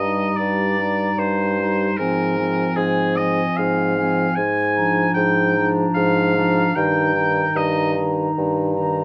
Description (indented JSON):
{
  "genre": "classical, slow romantic movement for wind quintet",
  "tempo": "75 BPM",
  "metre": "3/4",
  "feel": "rubato",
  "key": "Eb major",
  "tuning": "A4 = 440 Hz",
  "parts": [
    { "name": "concert flute", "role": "melody", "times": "0.0-9.0 s", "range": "Ab5 to Bb5", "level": "-29 LUFS", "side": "equal", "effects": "none" },
    { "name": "clear oboe", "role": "second line", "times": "0.0-8.0 s", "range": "Ab4 to Ab5", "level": "-25 LUFS", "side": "equal", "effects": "none" },
    { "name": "dark French horn", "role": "accompaniment", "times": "0.0-9.0 s", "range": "Eb3 to G3", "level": "-28 LUFS", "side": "equal", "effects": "none" },
    { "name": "mellow clarinet", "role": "accompaniment", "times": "0.0-9.0 s", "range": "C4 to Eb4", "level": "-30 LUFS", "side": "equal", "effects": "none" },
    { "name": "dark bassoon", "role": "bass", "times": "0.0-9.0 s", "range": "G2 to Ab2", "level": "-24 LUFS", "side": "equal", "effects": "none" }
  ],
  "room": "light reverb",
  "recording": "none",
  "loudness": "-19 LUFS",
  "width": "mono",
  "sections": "0.0-9.0 A section",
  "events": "none",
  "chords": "0.0 Eb/G; 2.0 Fm/Ab; 4.4 Bb7/Ab; 6.8 Eb/G",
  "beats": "0.40 1.20 | 2.00 2.79 3.60 | 4.38 5.17 5.96 | 6.76 7.56 8.38"
}